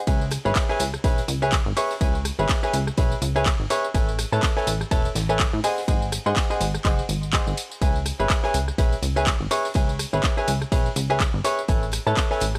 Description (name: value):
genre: piano house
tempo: 124 BPM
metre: 4/4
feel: swing 57% on 16ths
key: C# minor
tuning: A4 = 436 Hz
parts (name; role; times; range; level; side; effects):
- bright grand piano; riff; 0.1-12.4 s; G#4 to C#6; -28 LUFS; equal; sidechain pumping, analog delay
- plucky analog bass; bass; 0.1-12.6 s; E1 to A2; -29 LUFS; equal; tube saturation, sidechain pumping
- electronic kick drum; drums; 0.1-12.3 s; none; -25 LUFS; equal; none
- house drum kit; drums; 0.1-12.6 s; handclaps, hi-hat, ride cymbal, rim click, tambourine; -31 LUFS; equal; none
- huge arena drum kit; drums; 0.1-12.5 s; hi-hat, snare drum; -42 LUFS; equal; none
room: small room reverb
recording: dry, gritty hardware recording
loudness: -23 LUFS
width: mono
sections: 0.0-12.6 A section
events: none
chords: 0.1 C#m7; 3.9 Amaj9; 5.6 G#7; 7.8 C#m7; 11.7 Amaj9